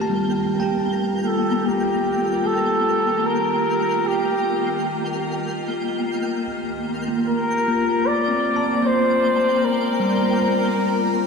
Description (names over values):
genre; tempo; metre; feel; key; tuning
ambient; 76 BPM; 4/4; straight; unclear; A4 = 440 Hz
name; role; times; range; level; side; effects
evolving wavetable pad; sustained chords; 0.0-11.3 s; Eb3 to D5; -26 LUFS; left 1 dB; phaser, built-in reverb, shimmer reverb
bell-like tine electric piano; arpeggios; 0.0-11.3 s; G3 to A5; -25 LUFS; moving between left 4 dB and right 3 dB; auto-pan, shimmer reverb, diffuse ambient delay
twinkling granular texture; texture; 0.0-11.3 s; Bb3 to G5; -26 LUFS; left 1 dB; built-in reverb, ensemble chorus, shimmer reverb
mellow flugelhorn; melody; 1.3-11.3 s; G4 to D5; -22 LUFS; left 1 dB; shimmer reverb, diffuse ambient delay
room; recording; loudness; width
wet plate reverb, RT60 3.0 s; dreamy mix soaked in reverb; -18 LUFS; side -5 dB against mid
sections
0.0-11.3 A section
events
fade-in on ambient pad 0.0-11.3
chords
0.0 Eb; 6.5 Bbadd9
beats
| 0.08 0.86 1.65 2.44 | 3.23 4.03 4.84 5.64 | 6.46 7.26 8.06 8.86 | 9.65 10.44 11.23